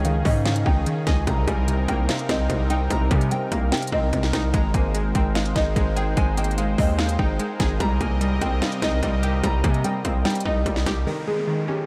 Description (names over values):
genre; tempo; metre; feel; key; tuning
hip hop, trap; 147 BPM; 4/4; half-time; C phrygian; A4 = 440 Hz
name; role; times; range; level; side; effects
nylon-string guitar; melody; 0.0-11.8 s; G4 to Bb5; -31 LUFS; equal; tape echo
glassy wavetable pluck; accompaniment; 0.0-11.9 s; C3 to Eb5; -30 LUFS; equal; chorus
warm analog pad; sustained chords; 0.0-11.0 s; C3 to Eb5; -32 LUFS; equal; chorus
distorted 808-style bass; bass; 0.0-11.1 s; Ab1 to C3; -26 LUFS; equal; distortion
trap drum kit; drums; 0.0-11.0 s; hi-hat, kick drum, snare drum; -28 LUFS; equal; none
downlifter; sound effects; 11.1-11.9 s; none; -40 LUFS; equal; none
room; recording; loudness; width
moderate huge ambient reverb, RT60 8.1 s; dreamy mix soaked in reverb; -22 LUFS; mono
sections
0.0-11.1 A section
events
none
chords
0.0 Dbsus2; 1.3 Cm7; 4.5 Abadd9; 7.8 Cm7; 11.1 Dbsus2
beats
0.05 0.46 0.86 | 1.27 1.68 2.09 2.50 | 2.90 3.31 3.72 4.13 | 4.54 4.95 5.35 5.76 | 6.17 6.58 6.99 7.39 | 7.80 8.21 8.62 9.03 | 9.44 9.84 10.25 10.66 | 11.07 11.48